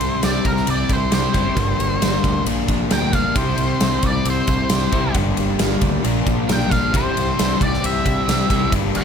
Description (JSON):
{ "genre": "classic rock", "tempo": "134 BPM", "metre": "4/4", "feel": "straight", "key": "unclear", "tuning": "A4 = 439 Hz", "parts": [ { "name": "octave-fuzz lead guitar", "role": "melody", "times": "0.0-9.0 s", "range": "Bb4 to G5", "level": "-24 LUFS", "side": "equal", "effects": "wah, distortion, analog delay" }, { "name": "crunchy overdriven guitar", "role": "riff", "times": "0.0-9.0 s", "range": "G2 to Bb4", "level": "-23 LUFS", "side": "left 15 dB", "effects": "none" }, { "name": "crunchy overdriven guitar", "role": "riff", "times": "0.0-9.0 s", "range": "G2 to Bb4", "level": "-25 LUFS", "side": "right 11 dB", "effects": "none" }, { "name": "growling fingered electric bass", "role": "bass", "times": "0.0-9.0 s", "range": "F#1 to D2", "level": "-24 LUFS", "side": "equal", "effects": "overdrive" }, { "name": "huge arena drum kit", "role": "drums", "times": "0.0-9.0 s", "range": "kick drum, ride cymbal, snare drum", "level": "-21 LUFS", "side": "equal", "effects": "none" } ], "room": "light reverb", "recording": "none", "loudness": "-16 LUFS", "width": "side -7 dB against mid", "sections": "0.0-9.0 A section", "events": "lead electric guitar solo 0.0-9.0", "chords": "0.0 C; 1.6 Gm; 2.5 Bb; 3.4 C; 5.2 Gm; 6.0 Bb; 6.9 C", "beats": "0.23 0.68 1.13 | 1.58 2.02 2.47 2.92 | 3.37 3.81 4.26 4.71 | 5.15 5.60 6.05 6.49 | 6.94 7.38 7.83 8.28 | 8.72" }